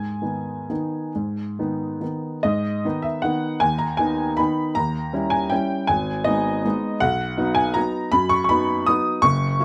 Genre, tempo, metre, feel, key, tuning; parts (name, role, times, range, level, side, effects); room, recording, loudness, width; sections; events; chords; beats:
classical, piano waltz; 126-172 BPM; 3/4; rubato; G# minor; A4 = 440 Hz
warm upright piano; solo; 0.0-9.6 s; F#1 to D#6; -22 LUFS; equal
light reverb; close, detailed microphones; -22 LUFS; mono
0.0-2.4 A section; 2.4-9.6 B section
0.0 G#m; 4.8 D#7b9; 5.9 G#m; 7.0 B
0.23 0.70 | 1.15 1.59 2.01 | 2.44 2.85 3.24 | 3.61 3.99 4.38 | 4.76 5.13 5.51 | 5.89 6.26 6.65 | 7.01 7.37 7.76 | 8.13 8.50 8.88 | 9.24 9.59